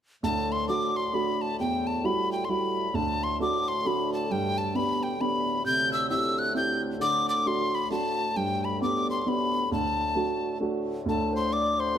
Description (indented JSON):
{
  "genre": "celtic folk",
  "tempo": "133 BPM",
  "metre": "3/4",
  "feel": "swing 61% on 8ths",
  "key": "D mixolydian",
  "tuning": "A4 = 440 Hz",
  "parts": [
    { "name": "hollow tin whistle", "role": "melody", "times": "0.2-12.0 s", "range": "G5 to G6", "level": "-27 LUFS", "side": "left 2 dB", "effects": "none" },
    { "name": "dark baby grand piano", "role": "accompaniment", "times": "0.2-12.0 s", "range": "D2 to G4", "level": "-29 LUFS", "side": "right 2 dB", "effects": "none" },
    { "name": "hand-pumped harmonium", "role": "drone", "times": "0.2-12.0 s", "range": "D2 to A2", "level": "-35 LUFS", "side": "left 2 dB", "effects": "none" },
    { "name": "mellow hollow wooden flute", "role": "second line", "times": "11.1-12.0 s", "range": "A4 to D5", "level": "-31 LUFS", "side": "left 2 dB", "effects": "none" }
  ],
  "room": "moderate recital hall reverb, RT60 1.7 s",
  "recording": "none",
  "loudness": "-25 LUFS",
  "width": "side -9 dB against mid",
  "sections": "0.2-11.1 A section",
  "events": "none",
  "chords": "0.2 D; 1.6 Emadd9; 2.9 D; 4.3 G; 5.7 C; 7.0 D; 8.4 G; 9.7 D; 11.1 D5"
}